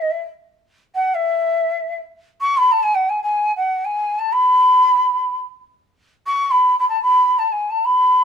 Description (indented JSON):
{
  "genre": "Persian modal ensemble",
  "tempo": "free time",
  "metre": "none",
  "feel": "none",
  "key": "unclear",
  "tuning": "A4 = 444 Hz",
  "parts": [
    { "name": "breathy ney", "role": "solo", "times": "0.0-8.2 s", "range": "D#5 to C#6", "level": "-15 LUFS", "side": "equal", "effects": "none" }
  ],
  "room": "light reverb",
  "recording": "band playing live in one room",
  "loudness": "-15 LUFS",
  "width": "side -7 dB against mid",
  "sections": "0.0-2.1 A section; 2.1-8.2 A section",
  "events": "none",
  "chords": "none",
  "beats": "free time"
}